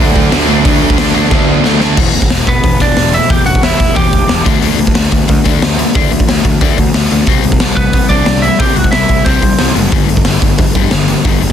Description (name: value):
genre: punk rock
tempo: 181 BPM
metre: 4/4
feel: straight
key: E minor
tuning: A4 = 440 Hz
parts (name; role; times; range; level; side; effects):
- distorted electric guitar; riff; 0.0-2.0 s; D3 to D4; -16 LUFS; right 18 dB; distortion
- distorted electric guitar; riff; 0.0-1.8 s; D3 to D4; -18 LUFS; right 2 dB; distortion
- overdriven semi-hollow guitar; riff; 0.0-11.5 s; E2 to D4; -16 LUFS; left 12 dB; none
- fuzz picked electric bass; bass; 0.0-11.5 s; E1 to D2; -16 LUFS; right 1 dB; overdrive
- raw garage drum kit; drums; 0.2-11.5 s; crash cymbal, hi-hat, kick drum, snare drum; -12 LUFS; equal; none
- lightly driven lead guitar; melody; 2.5-4.4, 7.8-9.7 s; B3 to G5; -14 LUFS; right 2 dB; none
room: little or no reverb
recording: dense, heavily limited modern master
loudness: -8 LUFS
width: side -9 dB against mid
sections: 0.0-2.0 A section; 2.0-11.5 B section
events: drum fill 1.3-2.0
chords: 0.0 D; 2.0 Em; 4.5 D5; 7.3 C; 9.9 G5